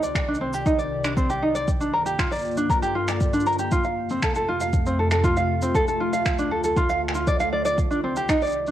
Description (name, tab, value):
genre	folktronica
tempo	118 BPM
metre	4/4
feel	straight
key	C dorian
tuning	A4 = 440 Hz
part	warbly tape-like pad	sustained chords	0.0-8.7 s	C2 to D5	-28 LUFS	left 1 dB	chorus, built-in reverb, phaser, cassette tape
part	tenor ukulele	arpeggios	0.0-8.7 s	C4 to F5	-23 LUFS	right 1 dB	cassette tape, tape echo
part	electronic cabasa and finger snaps	drums	0.0-8.7 s	none	-31 LUFS	equal	cassette tape
part	electronic kick drum	drums	0.2-8.4 s	none	-24 LUFS	equal	cassette tape
room	light reverb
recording	home recording on cassette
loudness	-20 LUFS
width	side -12 dB against mid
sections	0.0-8.7 A section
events	none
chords	0.0 Cmadd9; 1.7 Gm7; 3.7 F; 5.7 Dm; 7.8 Cmadd9